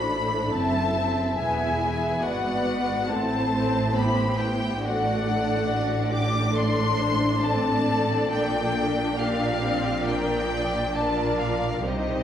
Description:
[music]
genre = classical, slow romantic movement for string orchestra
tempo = 69 BPM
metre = 4/4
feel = rubato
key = G minor from 4.8 s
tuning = A4 = 442 Hz
[part]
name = warm studio violin section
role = melody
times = 0.0-12.2 s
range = Eb5 to D6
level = -28 LUFS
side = left 3 dB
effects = none
[part]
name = warm studio violin section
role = second line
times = 0.0-12.2 s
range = F#4 to E5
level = -29 LUFS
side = left 1 dB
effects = none
[part]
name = warm studio viola section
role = accompaniment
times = 0.0-12.2 s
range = G3 to F#4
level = -28 LUFS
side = left 1 dB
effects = none
[part]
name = warm studio double bass section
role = bass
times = 0.0-12.2 s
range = E1 to C2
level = -30 LUFS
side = right 2 dB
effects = none
[part]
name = warm symphonic cello section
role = bass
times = 0.0-12.2 s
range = E2 to C3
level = -31 LUFS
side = right 2 dB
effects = none
[sound]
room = wet recital hall reverb, RT60 1.6 s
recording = heard from further back in the room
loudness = -22 LUFS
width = side -9 dB against mid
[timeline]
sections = 0.0-12.2 A section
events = none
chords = 0.0 Am; 1.4 E7; 3.1 Am; 4.8 D7/A; 8.3 Gm/Bb

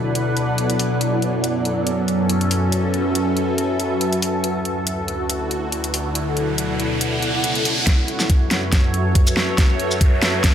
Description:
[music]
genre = heavy wobble dubstep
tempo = 140 BPM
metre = 4/4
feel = swing 54% on 16ths, half-time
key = F# minor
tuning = A4 = 439 Hz
[part]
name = evolving wavetable pad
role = sustained chords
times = 0.0-10.5 s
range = D2 to C#5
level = -22 LUFS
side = equal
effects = phaser, built-in reverb, sidechain pumping
[part]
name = granular cloud pad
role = texture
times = 0.0-10.5 s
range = B3 to A5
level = -24 LUFS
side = equal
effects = built-in reverb, sidechain pumping
[part]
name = dubstep drum kit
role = drums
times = 0.2-10.5 s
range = hi-hat, shaker, snare drum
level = -22 LUFS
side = left 1 dB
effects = overdrive, high-pass filter on hats, studio ambience, high-pass filter on snare, high-pass filter on perc
[part]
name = riser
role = sound effects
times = 5.7-10.5 s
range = none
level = -27 LUFS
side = right 1 dB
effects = none
[part]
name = electronic kick drum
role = drums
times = 7.9-10.5 s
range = none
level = -15 LUFS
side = equal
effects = overdrive, studio ambience
[sound]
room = moderate digital room reverb, RT60 1.0 s, digital ambience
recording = none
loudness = -17 LUFS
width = side -9 dB against mid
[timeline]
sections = 0.0-7.9 A section; 7.9-10.5 B section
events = riser 5.7-7.9, 7.9-10.5; build-up 7.9-10.5; drum fill 7.9-10.5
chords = 0.0 Bm; 1.0 F#m; 4.4 D; 6.2 Bm; 7.0 C#m; 7.9 F#m

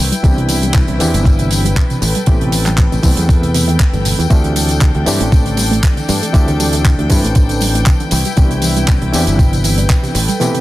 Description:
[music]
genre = nu-disco, nu disco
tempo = 118 BPM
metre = 4/4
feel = swing 54% on 16ths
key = unclear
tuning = A4 = 440 Hz
[part]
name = warm studio string section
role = sustained chords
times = 0.0-10.6 s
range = D4 to G5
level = -23 LUFS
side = left 3 dB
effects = sidechain pumping
[part]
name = wide unison pluck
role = arpeggios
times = 0.0-10.6 s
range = B2 to B3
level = -21 LUFS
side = right 2 dB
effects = sidechain pumping, analog delay
[part]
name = modern bright fingered electric bass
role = bass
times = 0.0-10.3 s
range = G1 to G2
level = -17 LUFS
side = equal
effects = none
[part]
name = damped 70s drum kit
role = drums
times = 0.0-10.6 s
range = handclaps, hi-hat, tambourine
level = -20 LUFS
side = right 1 dB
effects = soft clipping on snare
[part]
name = overdriven reed electric piano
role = accompaniment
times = 0.2-10.6 s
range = E3 to B4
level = -19 LUFS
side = equal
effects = fast tremolo, sidechain pumping
[part]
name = electronic kick drum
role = drums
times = 0.2-10.0 s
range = none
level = -12 LUFS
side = equal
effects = none
[part]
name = tambourine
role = percussion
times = 4.3-10.6 s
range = none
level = -31 LUFS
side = left 2 dB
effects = none
[sound]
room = studio reverb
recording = dense, heavily limited modern master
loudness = -11 LUFS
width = side -16 dB against mid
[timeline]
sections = 0.0-10.6 A section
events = filter sweep on synth arpeggio sound 0.0-10.6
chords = 0.0 Cmaj7; 2.0 Am9; 4.3 D7sus4; 8.1 Cmaj7

